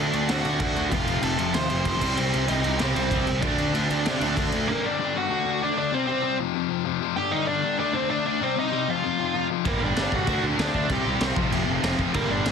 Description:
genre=punk rock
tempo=193 BPM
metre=4/4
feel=straight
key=unclear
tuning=A4 = 440 Hz
part: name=biting lead guitar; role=melody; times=0.0-12.5 s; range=Bb3 to C6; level=-27 LUFS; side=right 3 dB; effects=overdrive
part: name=distorted electric guitar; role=riff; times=0.0-12.5 s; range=F2 to D4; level=-28 LUFS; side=left 15 dB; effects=distortion
part: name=heavy high-gain guitar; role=riff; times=0.0-4.7, 9.7-12.5 s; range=F2 to D4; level=-32 LUFS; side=right 1 dB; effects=none
part: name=tight distorted guitar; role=riff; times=0.0-4.7, 9.7-12.5 s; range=F2 to D4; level=-31 LUFS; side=right 13 dB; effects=distortion
part: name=fuzz picked electric bass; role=bass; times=0.0-4.7, 9.7-12.5 s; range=F1 to C3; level=-28 LUFS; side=right 1 dB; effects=overdrive
part: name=raw garage drum kit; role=drums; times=0.1-4.6, 9.7-12.5 s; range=crash cymbal, kick drum, snare drum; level=-28 LUFS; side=equal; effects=none
room=light reverb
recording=dense, heavily limited modern master, lossy compression artefacts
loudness=-22 LUFS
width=side -6 dB against mid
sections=0.0-4.7 A section; 4.7-12.5 B section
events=half time 0.0-4.7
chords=0.0 D; 0.9 F; 2.0 Cm; 3.4 D5; 4.7 Gm; 5.3 D; 5.9 C5; 6.4 F5; 7.2 G5; 7.8 D5; 8.4 Cm; 8.9 F5; 9.7 Gm; 10.3 D; 10.9 C5; 11.4 F5

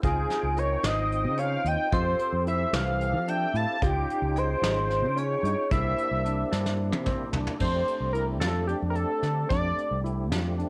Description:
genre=progressive instrumental, band music in an uneven meter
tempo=222 BPM (eighths)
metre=7/8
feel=straight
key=F major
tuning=A4 = 440 Hz
part: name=octave-doubled lead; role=melody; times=0.0-10.0 s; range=G4 to A5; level=-31 LUFS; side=equal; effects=chorus
part: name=vibraphone with hard mallets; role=second line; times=0.0-7.0 s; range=Eb4 to F5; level=-38 LUFS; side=equal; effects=none
part: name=percussive tonewheel organ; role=accompaniment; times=0.0-10.7 s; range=A3 to G5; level=-39 LUFS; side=equal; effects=overdrive, chorus vibrato, slow rotary speaker
part: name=warm concert grand piano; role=arpeggios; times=0.0-10.7 s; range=E3 to F4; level=-39 LUFS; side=equal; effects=none
part: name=fingered electric bass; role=bass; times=0.0-10.6 s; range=Ab1 to F3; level=-31 LUFS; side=equal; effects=none
part: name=soft brush drum kit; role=drums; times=0.0-10.7 s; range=crash cymbal, hi-hat, kick drum, snare drum, toms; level=-34 LUFS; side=equal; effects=none
room=light reverb, studio reverb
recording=none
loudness=-27 LUFS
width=mono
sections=0.0-7.6 A section; 7.6-10.7 B section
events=drum fill 6.5-7.6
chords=0.0 Dbmaj9#11; 1.9 Fmaj7; 3.8 Dbmaj9#11; 5.7 C7; 7.6 F6

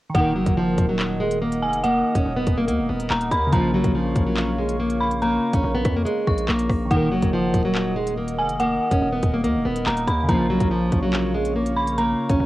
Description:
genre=hip hop, drill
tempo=142 BPM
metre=4/4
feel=half-time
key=Eb minor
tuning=A4 = 441 Hz
part: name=nylon-string guitar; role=melody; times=0.1-12.5 s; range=Eb3 to Db4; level=-23 LUFS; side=right 1 dB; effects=low-pass filter, cassette tape
part: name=dark detuned synth bell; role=second line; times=0.1-12.4 s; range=Gb5 to Db6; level=-26 LUFS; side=right 1 dB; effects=chorus, cassette tape, plate reverb, tape echo
part: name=glassy digital keys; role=accompaniment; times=0.1-12.5 s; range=Db3 to Bb4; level=-28 LUFS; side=left 1 dB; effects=chorus, low-pass filter, cassette tape
part: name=dark analog pad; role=sustained chords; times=0.6-12.5 s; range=Bb4 to Eb6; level=-32 LUFS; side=left 1 dB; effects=chorus, cassette tape
part: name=distorted 808-style bass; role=bass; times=0.1-12.5 s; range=Eb1 to F2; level=-28 LUFS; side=equal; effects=distortion
part: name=drill drum kit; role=drums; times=0.1-12.4 s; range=handclaps, hi-hat, kick drum, rim click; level=-23 LUFS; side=equal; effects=cassette tape
room=moderate booth ambience, RT60 0.2 s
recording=home recording on cassette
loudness=-19 LUFS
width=side -16 dB against mid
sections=0.1-12.5 A section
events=none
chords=0.1 Ebm; 3.5 Bbm; 6.9 Ebm; 10.3 Bbm

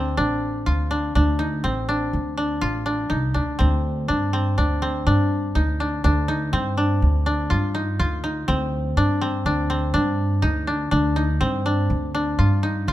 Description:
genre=contemporary instrumental, chamber music in an uneven meter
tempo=123 BPM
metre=5/4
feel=straight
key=unclear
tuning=A4 = 440 Hz
part: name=koto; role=arpeggios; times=0.0-12.9 s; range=A3 to F4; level=-23 LUFS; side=left 1 dB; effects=none
part: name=upright bass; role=bass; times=0.0-12.9 s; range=A1 to G2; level=-22 LUFS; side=equal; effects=none
room=light reverb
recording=close, detailed microphones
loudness=-20 LUFS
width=side -14 dB against mid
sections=0.0-12.9 A section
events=none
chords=0.0 Dm7; 3.6 Cmadd9/D

